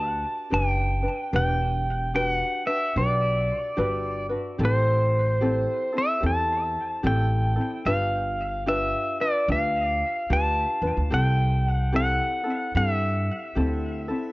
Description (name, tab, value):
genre	Hawaiian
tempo	74 BPM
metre	4/4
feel	swing 64% on 8ths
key	G major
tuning	A4 = 438 Hz
part	pedal steel guitar	melody	0.0-14.3 s	C5 to A5	-25 LUFS	equal	digital delay
part	ukulele	accompaniment	0.0-14.3 s	C4 to B4	-30 LUFS	left 1 dB	none
part	upright bass	bass	0.0-14.1 s	E1 to G2	-25 LUFS	equal	tube saturation
room	light reverb, small room ambience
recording	worn, warbling old tape, cassette tape, warbly pitch drift, nothing above 7.8 kHz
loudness	-22 LUFS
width	side -21 dB against mid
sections	0.0-14.3 A section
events	none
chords	0.0 Gmaj7; 1.3 Em9; 4.6 Am7; 7.8 G7; 11.1 C6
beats	0.51 | 1.33 2.14 2.96 3.77 | 4.59 5.40 6.22 7.03 | 7.85 8.66 9.48 10.30 | 11.11 11.93 12.75 13.56